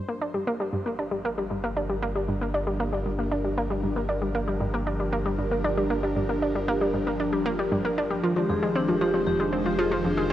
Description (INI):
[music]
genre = ambient, sequencer-driven space music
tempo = 116 BPM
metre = 4/4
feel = straight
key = G phrygian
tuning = A4 = 441 Hz
[part]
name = phased analog pad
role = sustained chords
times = 0.0-10.3 s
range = Eb3 to C5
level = -30 LUFS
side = equal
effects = phaser, chorus, shimmer reverb
[part]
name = round analog bass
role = bass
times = 0.0-10.3 s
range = F1 to G1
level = -34 LUFS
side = equal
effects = none
[part]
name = analog pluck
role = riff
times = 0.1-10.3 s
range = F2 to D4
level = -26 LUFS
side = equal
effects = chorus, tape echo, shimmer reverb
[part]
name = vibraphone with medium mallets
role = arpeggios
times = 8.4-10.3 s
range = D4 to Ab4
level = -27 LUFS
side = left 1 dB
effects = auto-pan, tape echo, shimmer reverb
[sound]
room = moderate huge ambient reverb, RT60 8.7 s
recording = worn, warbling old tape, cassette tape, warbly pitch drift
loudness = -24 LUFS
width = side -12 dB against mid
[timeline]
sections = 0.0-10.3 A section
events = fade-in on analog synth pad 0.0-10.3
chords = 0.0 Gm7; 8.2 Fm7